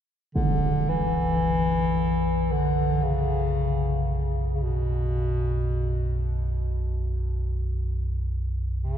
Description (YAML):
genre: dark ambient drone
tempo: free time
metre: none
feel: none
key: B minor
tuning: A4 = 440 Hz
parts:
  - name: mellow bass clarinet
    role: melody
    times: 0.3-9.0 s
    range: B2 to E3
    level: -26 LUFS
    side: left 1 dB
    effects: ping-pong delay
  - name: deep rumbling drone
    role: drone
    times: 0.8-9.0 s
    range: B1 to F#2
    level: -27 LUFS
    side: right 1 dB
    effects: built-in reverb, wide subtle chorus
  - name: impact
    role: percussion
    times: 0.4-0.6 s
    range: none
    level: -30 LUFS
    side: right 1 dB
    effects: low-pass filter on sfx
room: wet cathedral reverb, RT60 5.9 s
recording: none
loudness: -23 LUFS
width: side -9 dB against mid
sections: 0.4-9.0 A section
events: filter sweep on synth drone 0.4-9.0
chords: 0.4 B5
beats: free time